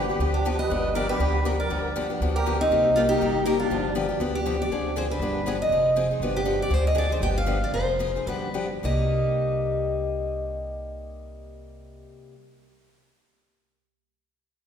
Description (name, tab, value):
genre	acoustic string swing (jazz manouche)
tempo	204-240 BPM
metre	4/4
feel	swing 56% on 8ths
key	C minor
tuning	A4 = 440 Hz
part	picked steel-string acoustic guitar	melody	0.0-12.0 s	Eb4 to G5	-26 LUFS	equal	none
part	musette accordion	second line	0.0-3.9 s	C4 to B4	-32 LUFS	right 3 dB	none
part	picked steel-string acoustic guitar	accompaniment	0.0-12.4 s	C3 to Ab4	-28 LUFS	left 4 dB	none
part	upright bass	bass	0.0-12.0 s	F1 to D2	-28 LUFS	right 1 dB	none
room	wet concert hall reverb, RT60 2.1 s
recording	recorded in a church or concert hall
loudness	-22 LUFS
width	side -8 dB against mid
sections	0.0-4.7 A section; 4.7-8.8 B section; 8.8-11.2 C section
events	slowing down 6.7-8.8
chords	0.0 G7#9; 2.7 Cm7; 3.7 G7; 4.7 Dm7b5; 5.2 G7; 5.7 Fm7; 6.2 G7; 6.7 Dm7b5; 7.2 G7; 7.7 Fm7; 8.3 G7; 8.8 Cm7